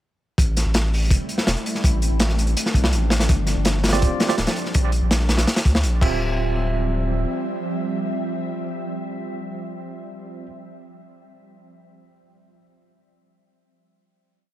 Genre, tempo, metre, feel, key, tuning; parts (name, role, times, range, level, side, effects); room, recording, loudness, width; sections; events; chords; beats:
drum and bass, jungle; 165 BPM; 4/4; straight; D minor; A4 = 440 Hz
ethereal airy pad; sustained chords; 0.9-9.9 s; F3 to E5; -30 LUFS; equal; ensemble chorus, built-in reverb
saturated sub bass; bass; 0.4-7.2 s; D1 to D2; -21 LUFS; equal
crunchy breakbeat drum kit; drums; 0.4-6.1 s; crash cymbal, hi-hat, kick drum, snare drum; -20 LUFS; equal
tine electric piano; stabs; 3.9-10.5 s; C4 to E5; -28 LUFS; right 4 dB; medium stereo tremolo, dub echo
small room reverb; -19 LUFS; side -14 dB against mid
0.4-6.2 drop; 6.2-9.1 final hit
drop 0.4-6.2
0.4 Am7; 1.8 Dm7/A; 3.3 G7sus4; 4.7 Bb; 6.0 Dm11
| 0.38 0.74 1.11 1.47 | 1.84 2.20 2.56 2.93 | 3.29 3.65 4.02 4.38 | 4.75 5.11 5.47 5.84 | 6.20 6.56 6.93 7.29 | 7.65 8.02 8.38 8.74